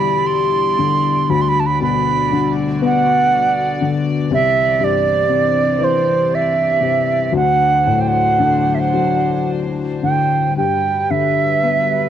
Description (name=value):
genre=celtic folk, Celtic slow air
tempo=37-40 BPM (dotted quarters)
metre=6/8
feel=rubato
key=G major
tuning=A4 = 440 Hz
part: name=bright reedy wooden flute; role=melody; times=0.0-12.1 s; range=C5 to C6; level=-16 LUFS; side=right 5 dB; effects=none
part: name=dark upright piano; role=accompaniment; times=0.0-12.1 s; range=C2 to B3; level=-18 LUFS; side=left 6 dB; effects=none
part: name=rich symphonic string section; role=sustained chords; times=0.0-12.1 s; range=D3 to D5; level=-27 LUFS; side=equal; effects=none
room=moderate spring reverb, RT60 1.3 s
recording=home recording on cassette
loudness=-14 LUFS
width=side -10 dB against mid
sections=0.0-10.6 A section; 10.6-12.1 B section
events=none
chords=0.0 Em7; 1.3 Gmaj7/D; 4.3 C; 7.3 D7; 10.6 Gmaj7